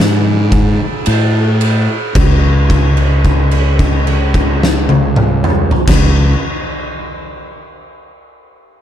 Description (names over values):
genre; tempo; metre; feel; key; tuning
stoner and doom metal; 55 BPM; 4/4; straight; unclear; A4 = 441 Hz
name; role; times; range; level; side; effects
fuzz fingered electric bass; bass; 0.0-6.3 s; C#2 to A2; -12 LUFS; equal; overdrive
oversized low-tuned drum kit; drums; 0.0-6.1 s; crash cymbal, kick drum, ride cymbal, snare drum, toms; -14 LUFS; equal; none
room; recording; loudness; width
little or no reverb; dark, warm production; -10 LUFS; side -10 dB against mid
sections
0.0-2.2 A section; 2.2-6.5 B section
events
held note 2.2-5.9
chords
none